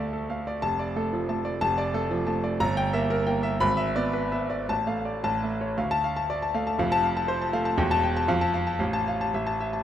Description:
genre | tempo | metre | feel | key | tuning
classical, virtuoso piano study | 107-122 BPM | 2/4 | rubato | D minor | A4 = 440 Hz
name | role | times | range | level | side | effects
clear concert grand piano | solo | 0.0-9.8 s | E1 to B5 | -24 LUFS | equal | none
room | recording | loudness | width
moderate concert hall reverb, RT60 2.0 s | none | -24 LUFS | side -10 dB against mid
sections
0.0-5.8 A section; 5.8-9.8 B section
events
none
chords
0.0 Dm; 0.6 Dm/F; 2.6 Edim/G; 3.6 E7/G#; 4.7 Dm/A; 5.2 A; 5.8 Dm; 6.8 F; 7.8 A5/E; 8.3 F; 8.8 F/A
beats
0.13 | 0.62 1.12 | 1.61 2.11 | 2.61 3.10 | 3.61 4.14 | 4.68 5.24 | 5.79 6.30 | 6.80 7.29 | 7.79 8.29 | 8.81 9.34

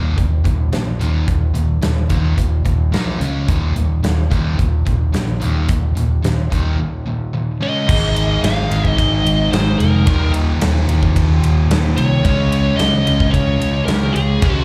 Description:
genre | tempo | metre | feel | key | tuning
hard rock | 109 BPM | 4/4 | straight | unclear | A4 = 440 Hz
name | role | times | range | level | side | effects
sludgy distorted guitar | riff | 0.0-14.6 s | Eb2 to Db4 | -25 LUFS | equal | overdrive
sludgy distorted guitar | riff | 0.0-14.6 s | Eb2 to Db4 | -27 LUFS | equal | none
fingered electric bass | bass | 0.0-14.6 s | Eb1 to Db2 | -20 LUFS | equal | none
big rock drum kit | drums | 0.2-14.5 s | crash cymbal, hi-hat, kick drum, ride cymbal, snare drum | -23 LUFS | equal | none
high-gain lead guitar | melody | 7.6-14.6 s | Ab4 to F5 | -23 LUFS | equal | distortion, slapback echo
raw garage guitar | riff | 7.9-14.6 s | Eb2 to Db4 | -29 LUFS | equal | overdrive
room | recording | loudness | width
small room ambience | live gig heard through the venue's PA, club reverb | -16 LUFS | mono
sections
0.0-7.9 A section; 7.9-14.6 B section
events
break 6.8-7.9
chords
0.0 Eb5; 2.9 Bb5; 3.2 Db5; 3.5 Eb5; 7.6 Db5; 7.9 Ab5; 10.1 Eb5; 12.2 Db5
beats
0.17 0.72 | 1.27 1.82 2.38 2.93 | 3.48 4.03 4.58 5.14 | 5.69 6.24 6.79 7.34 | 7.89 8.43 8.98 9.53 | 10.07 10.62 11.16 11.71 | 12.25 12.79 13.34 13.88 | 14.42

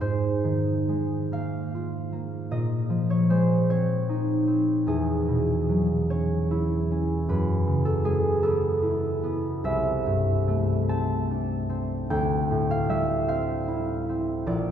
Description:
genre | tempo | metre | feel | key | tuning
classical, solo harp piece | 44-54 BPM (dotted quarters) | 6/8 | rubato | unclear | A4 = 437 Hz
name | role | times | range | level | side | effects
concert harp | solo | 0.0-14.7 s | Bb1 to A5 | -23 LUFS | equal | none
room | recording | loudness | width
wet cathedral reverb, RT60 5.1 s | recorded in a church or concert hall | -23 LUFS | side -9 dB against mid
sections
0.0-14.7 A section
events
none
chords
0.0 Ab69; 2.5 Bbm11; 4.9 E69; 7.3 Gbm11; 9.6 C69; 12.1 Dm11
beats
| 0.03 1.35 | 2.54 3.73 | 4.89 6.12 | 7.29 8.42 | 9.64 10.90 | 12.11 13.29 | 14.48

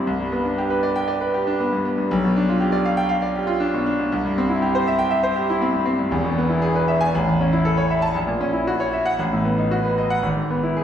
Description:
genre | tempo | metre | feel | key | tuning
classical, romantic character piece for solo piano | 118 BPM | 4/4 | rubato | C major, E major from 6.1 s | A4 = 440 Hz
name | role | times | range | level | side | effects
bright concert grand piano | solo | 0.0-10.8 s | E1 to A5 | -18 LUFS | equal | none
room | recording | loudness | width
wet recital hall reverb, RT60 1.3 s | heard from further back in the room | -18 LUFS | side -9 dB against mid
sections
0.0-10.8 A section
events
none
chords
0.1 G/C; 2.1 G7/B; 4.1 C; 6.1 E; 7.1 A; 8.2 F#7/A#; 9.2 B7/A; 10.2 E/G#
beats
| 0.06 0.57 1.08 1.59 | 2.10 2.60 3.09 3.60 | 4.11 4.61 5.11 5.60 | 6.11 6.62 7.13 7.65 | 8.15 8.67 9.20 9.72 | 10.24 10.77

